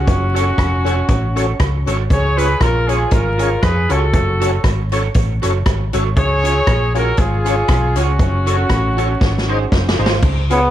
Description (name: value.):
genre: ska.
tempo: 118 BPM.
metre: 4/4.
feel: swing 54% on 8ths.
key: Db mixolydian.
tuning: A4 = 441 Hz.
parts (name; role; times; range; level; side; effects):
warm horn section; melody; 0.0-10.0 s; Db4 to Db5; -19 LUFS; equal; none.
hollow-body short-scale fingered electric bass; bass; 0.0-10.7 s; F1 to F2; -18 LUFS; equal; none.
swinging big-band drum kit; drums; 0.1-10.6 s; crash cymbal, hi-hat, kick drum, rim click, snare drum; -18 LUFS; equal; none.
electric guitar at the edge of break-up; accompaniment; 0.3-10.7 s; Eb4 to Db5; -24 LUFS; right 12 dB; analog chorus, tape echo.
tonewheel organ; stabs; 0.3-10.6 s; Db4 to Eb5; -25 LUFS; left 11 dB; chorus vibrato, slow rotary speaker.
bright trombone; melody; 10.5-10.7 s; Cb4; -13 LUFS; equal; none.
room: small room ambience.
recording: 1960s-style stereo with parts hard left and right, vinyl crackle.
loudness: -14 LUFS.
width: side -12 dB against mid.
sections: 0.0-10.2 A section.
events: drum fill 9.2-10.2.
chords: 0.1 Gbm; 2.1 Db; 4.1 Gbm; 6.2 Db; 8.2 Gbm; 9.2 Ab.